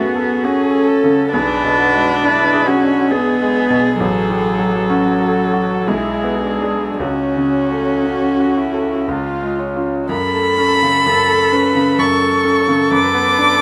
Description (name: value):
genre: classical, slow romantic movement for piano quartet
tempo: 50-70 BPM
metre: 3/4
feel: rubato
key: F# minor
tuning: A4 = 442 Hz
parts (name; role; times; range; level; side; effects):
- dark violin; melody; 0.0-13.6 s; C#4 to D6; -22 LUFS; equal; none
- warm cello; second line; 0.0-13.6 s; F#3 to B4; -19 LUFS; equal; none
- bright concert grand piano; accompaniment; 0.0-13.6 s; A1 to A4; -21 LUFS; equal; none
- warm viola; accompaniment; 0.0-13.6 s; E#4 to B4; -25 LUFS; equal; none
room: light reverb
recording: close, detailed microphones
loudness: -16 LUFS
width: mono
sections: 0.0-10.1 A section; 10.1-13.6 B section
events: none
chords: 0.0 F#m; 1.3 G#dim/B; 4.0 F#m/A; 5.9 G#dim/B; 7.0 F#m/C#; 9.1 C#; 10.1 F#m; 12.9 Bm/F#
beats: 0.45 | 1.34 2.23 3.12 | 4.00 4.90 5.88 | 7.00 8.06 9.09 | 10.10 11.07 12.00 | 12.94